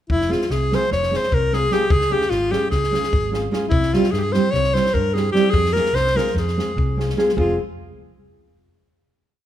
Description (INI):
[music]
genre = balkan folk, Balkan wedding band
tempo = 296 BPM (eighths)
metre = 9/8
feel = straight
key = F harmonic minor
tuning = A4 = 441 Hz
[part]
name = clear alto saxophone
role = melody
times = 0.1-7.6 s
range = E4 to Db5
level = -20 LUFS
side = left 1 dB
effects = none
[part]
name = hollow-body short-scale fingered electric bass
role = bass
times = 0.1-7.6 s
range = F1 to G2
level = -24 LUFS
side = equal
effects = none
[part]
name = compact cocktail drum kit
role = percussion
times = 0.1-7.6 s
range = kick drum, snare drum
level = -25 LUFS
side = left 1 dB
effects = none
[part]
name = nylon-string guitar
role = accompaniment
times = 0.3-7.6 s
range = G3 to Ab4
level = -23 LUFS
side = right 2 dB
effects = none
[sound]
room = moderate recital hall reverb, RT60 1.7 s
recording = minimal, uncompressed stereo recording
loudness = -17 LUFS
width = side -11 dB against mid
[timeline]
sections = 0.1-7.4 A section; 7.4-9.2 final chord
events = none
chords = 0.1 Fm; 1.9 Db; 3.7 C; 5.5 Fm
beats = | 0.09 0.29 0.49 0.69 0.90 1.10 1.30 1.50 1.70 | 1.90 2.10 2.30 2.50 2.70 2.90 3.10 3.31 3.51 | 3.71 3.91 4.11 4.31 4.51 4.72 4.92 5.12 5.33 | 5.53 5.73 5.94 6.14 6.35 6.55 6.76 6.96 7.17 | 7.37 7.58